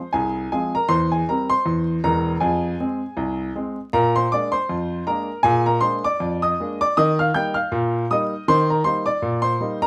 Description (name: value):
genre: ragtime piano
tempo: 79 BPM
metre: 2/4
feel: swing 57% on 16ths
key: Eb major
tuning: A4 = 440 Hz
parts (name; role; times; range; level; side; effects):
- warm grand piano; solo; 0.0-9.9 s; E1 to G6; -21 LUFS; equal; none
room: light reverb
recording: vinyl crackle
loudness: -21 LUFS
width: mono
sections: 0.0-9.9 A section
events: none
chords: 0.0 Fm; 0.9 C/E; 2.4 Fm; 3.9 Bb7; 7.0 Eb